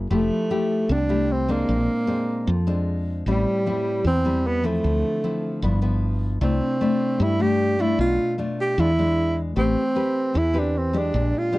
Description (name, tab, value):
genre	bossa nova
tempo	152 BPM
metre	4/4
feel	straight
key	unclear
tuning	A4 = 440 Hz
part	nylon-string guitar	accompaniment	0.0-11.6 s	G2 to B4	-25 LUFS	left 2 dB	none
part	woody fretless electric bass	bass	0.0-11.3 s	F1 to G2	-24 LUFS	equal	lush chorus
part	breathy alto saxophone	melody	0.1-11.6 s	G3 to G4	-23 LUFS	right 1 dB	none
room	light reverb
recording	dry, close 1970s-style studio recording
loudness	-20 LUFS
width	side -18 dB against mid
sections	0.0-11.6 A section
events	none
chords	0.1 Fmaj9; 1.7 Bb9; 3.3 Am7; 4.8 Dm9; 5.6 G6; 6.4 C69; 8.0 Bm7b5; 8.8 E7b9; 9.6 Am9